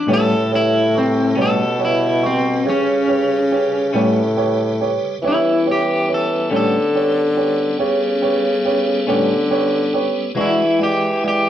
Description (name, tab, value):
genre	slow blues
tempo	47 BPM (dotted quarters)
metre	12/8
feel	straight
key	A mixolydian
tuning	A4 = 442 Hz
part	electric guitar at the edge of break-up	melody	0.0-11.5 s	C4 to A4	-19 LUFS	left 1 dB	tremolo
part	tonewheel organ	sustained chords	0.0-11.5 s	C#3 to B4	-28 LUFS	left 2 dB	slow rotary speaker, overdrive, chorus vibrato
part	semi-hollow electric guitar	accompaniment	0.1-10.6 s	A2 to F#4	-21 LUFS	left 3 dB	harmonic tremolo
part	warm upright piano	accompaniment	0.1-11.5 s	G#3 to C#6	-22 LUFS	right 4 dB	none
part	warm bassoon	bass	0.1-11.5 s	A2 to E3	-19 LUFS	left 1 dB	none
room	wet studio reverb, RT60 0.7 s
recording	band playing live in one room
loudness	-15 LUFS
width	side -11 dB against mid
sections	0.0-11.5 A section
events	clean electric guitar solo 0.0-11.5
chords	0.1 A9; 10.4 E9